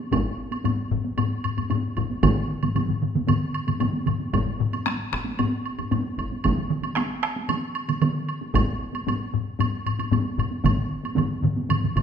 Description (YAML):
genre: japanese traditional, taiko drum ensemble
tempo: 114 BPM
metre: 4/4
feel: straight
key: none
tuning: none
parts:
  - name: taiko ensemble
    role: percussion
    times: 0.1-11.8 s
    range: none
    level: -29 LUFS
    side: right 1 dB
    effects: none
  - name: taiko ensemble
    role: percussion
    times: 0.1-12.0 s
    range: none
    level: -26 LUFS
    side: left 6 dB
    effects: none
  - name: taiko ensemble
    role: percussion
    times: 0.1-12.0 s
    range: none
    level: -26 LUFS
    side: right 1 dB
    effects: none
  - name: woodblock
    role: percussion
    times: 0.1-12.0 s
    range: none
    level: -32 LUFS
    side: right 6 dB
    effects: none
  - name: taiko ensemble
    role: percussion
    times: 2.2-12.0 s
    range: none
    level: -26 LUFS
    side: right 5 dB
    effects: none
room: wet recital hall reverb, RT60 1.4 s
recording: minimal, uncompressed stereo recording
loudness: -22 LUFS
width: side -8 dB against mid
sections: 0.0-12.0 A section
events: none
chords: none